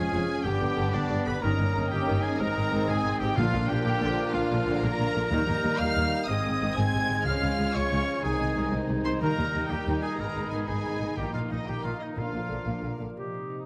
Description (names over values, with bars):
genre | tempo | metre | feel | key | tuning
cinematic, heroic adventure film score | 123 BPM (dotted quarters) | 12/8 | straight | Eb major | A4 = 440 Hz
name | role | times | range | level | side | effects
warm symphonic violin section | melody | 0.0-13.0 s | D5 to Ab6 | -38 LUFS | equal | none
clear oboe | second line | 0.0-13.0 s | D4 to Ab5 | -38 LUFS | equal | none
mellow hollow small flute group | second line | 0.0-13.0 s | Bb5 to Ab6 | -44 LUFS | equal | none
warm clarinet | second line | 0.0-13.6 s | B3 to G4 | -41 LUFS | equal | none
warm symphonic violin section | second line | 0.0-13.0 s | Ab3 to Ab4 | -42 LUFS | equal | none
dark symphonic viola section | accompaniment | 0.0-13.1 s | C3 to B3 | -37 LUFS | equal | none
mellow French horn section | sustained chords | 0.0-13.0 s | G3 to G4 | -38 LUFS | equal | none
mellow trombone section | sustained chords | 0.0-13.7 s | Bb2 to B3 | -41 LUFS | equal | none
concert harp | arpeggios | 0.0-13.7 s | F2 to Eb6 | -41 LUFS | equal | none
mellow trumpet section | stabs | 0.0-13.7 s | D4 to Ab5 | -36 LUFS | equal | none
warm symphonic double bass section | bass | 0.0-13.1 s | F1 to Eb2 | -35 LUFS | equal | none
rich symphonic cello section | bass | 0.1-13.1 s | C2 to Bb2 | -36 LUFS | equal | none
timpani | percussion | 3.4-5.8, 11.2-12.6 s | Bb2 to Eb3 | -38 LUFS | equal | none
room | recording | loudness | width
moderate scoring stage reverb, RT60 1.7 s | none | -28 LUFS | mono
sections
0.0-13.2 A section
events
none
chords
0.4 G; 1.4 Eb7/G; 2.4 Ab; 3.4 Bb; 5.3 Eb; 6.3 Ab; 7.3 Db; 8.2 Ab/C; 9.2 Eb; 10.2 Abm; 11.2 Eb/Bb; 12.2 Bb